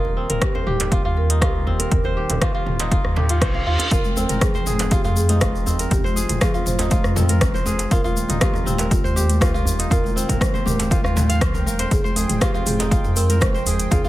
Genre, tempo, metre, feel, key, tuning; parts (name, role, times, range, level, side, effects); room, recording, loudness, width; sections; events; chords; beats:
afro house; 120 BPM; 4/4; straight; A4 = 441 Hz
marimba with soft mallets; melody; 0.0-14.1 s; F4 to C5; -30 LUFS; right 1 dB; vintage 12-bit sampler grit, tape echo
warm analog pad; sustained chords; 0.0-14.1 s; Eb3 to G5; -30 LUFS; equal; chorus, sidechain pumping
kora; arpeggios; 0.0-14.1 s; C4 to F5; -26 LUFS; equal; sidechain pumping, tape echo
warm sub bass; bass; 0.0-14.1 s; Eb1 to F2; -23 LUFS; equal; sidechain pumping
djembe; percussion; 0.0-14.0 s; -29 LUFS; right 1 dB
house drum kit; drums; 0.3-14.0 s; hi-hat, rim click, toms; -25 LUFS; equal; overdrive
electronic kick drum; drums; 0.4-14.0 s; -21 LUFS; equal; overdrive
reverse cymbal; sound effects; 3.2-3.9 s; -28 LUFS; right 1 dB
egg shaker; percussion; 3.9-14.1 s; -32 LUFS; left 3 dB
congas; percussion; 4.1-14.1 s; -28 LUFS; left 1 dB
small room ambience; -17 LUFS; side -16 dB against mid
0.0-14.1 A section
reverse cymbal 3.2-3.9
0.0 Eb; 3.9 Fmadd9; 7.9 Eb; 11.9 Fmadd9
0.41 0.92 1.42 | 1.92 2.42 2.92 3.42 | 3.92 4.42 4.92 5.42 | 5.92 6.42 6.92 7.42 | 7.92 8.41 8.91 9.41 | 9.91 10.41 10.91 11.41 | 11.91 12.41 12.91 13.41 | 13.91